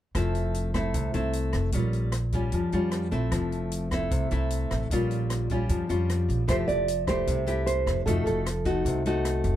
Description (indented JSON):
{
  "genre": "bossa nova",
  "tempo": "152 BPM",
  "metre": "4/4",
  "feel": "straight",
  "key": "F major",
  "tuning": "A4 = 441 Hz",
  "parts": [
    { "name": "upright bass", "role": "bass", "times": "0.1-9.6 s", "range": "F1 to F2", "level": "-28 LUFS", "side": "equal", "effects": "none" },
    { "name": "open jazz drum kit", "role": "drums", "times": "0.1-9.5 s", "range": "hi-hat, kick drum, rim click", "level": "-33 LUFS", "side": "equal", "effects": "none" },
    { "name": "nylon-string guitar", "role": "accompaniment", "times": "0.2-9.6 s", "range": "Bb2 to G4", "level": "-28 LUFS", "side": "left 2 dB", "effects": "none" },
    { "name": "nylon-string guitar", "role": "melody", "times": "6.5-9.0 s", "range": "A4 to D5", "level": "-28 LUFS", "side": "right 4 dB", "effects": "none" }
  ],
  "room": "little or no reverb",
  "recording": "close, detailed microphones",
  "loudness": "-24 LUFS",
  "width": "side -12 dB against mid",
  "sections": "0.2-6.5 A section; 6.5-9.6 B section",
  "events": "none",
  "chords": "0.2 Fmaj7; 1.7 Bbm6; 3.3 Fmaj7; 4.9 Bbm6; 6.5 Fmaj9; 8.1 F7b9"
}